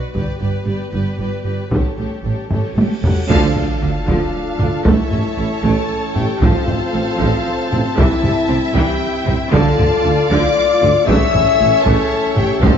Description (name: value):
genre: cinematic, epic orchestral film score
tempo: 77 BPM (dotted quarters)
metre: 6/8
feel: straight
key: D minor from 3.3 s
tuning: A4 = 440 Hz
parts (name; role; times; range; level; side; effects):
- warm symphonic violin section; melody; 0.0-12.8 s; C#5 to E6; -28 LUFS; left 1 dB; none
- clear symphonic violin section; second line; 0.0-12.8 s; A4 to A5; -25 LUFS; left 1 dB; none
- rich symphonic viola section; accompaniment; 0.0-12.8 s; C#3 to A4; -24 LUFS; right 1 dB; none
- mellow French horn section; sustained chords; 0.0-12.8 s; F#3 to E5; -20 LUFS; left 6 dB; none
- rich symphonic cello section; bass; 0.1-12.7 s; G2 to D3; -24 LUFS; right 2 dB; none
- taiko ensemble; drums; 0.1-12.8 s; none; -19 LUFS; equal; none
- rich symphonic double bass section; bass; 0.2-12.7 s; G1 to D2; -23 LUFS; right 3 dB; none
- cymbal swell and sub drop; sound effects; 2.8-4.9 s; none; -27 LUFS; equal; none
- bright trombone section; sustained chords; 3.3-12.8 s; G2 to F4; -26 LUFS; right 3 dB; none
- warm tuba; bass; 3.3-12.7 s; A1 to D2; -24 LUFS; right 4 dB; none
- timpani; percussion; 12.6-12.8 s; A2; -18 LUFS; left 1 dB; none
room: moderate scoring stage reverb, RT60 1.9 s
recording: dark, warm production, nothing above 7.7 kHz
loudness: -14 LUFS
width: side -8 dB against mid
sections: 0.0-3.3 A section; 3.3-12.8 B section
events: drum fill 2.5-3.3; cymbal swell 2.8-3.3; band accent 3.3-3.8; impact 3.3-4.9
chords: 0.1 G; 1.7 A7; 3.3 Dm; 4.9 A; 6.4 F/A; 8.0 C; 9.5 Dm; 11.1 A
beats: | 0.15 0.93 | 1.72 2.51 | 3.30 4.08 | 4.86 5.64 | 6.42 7.20 | 7.98 8.75 | 9.53 10.31 | 11.08 11.85 | 12.62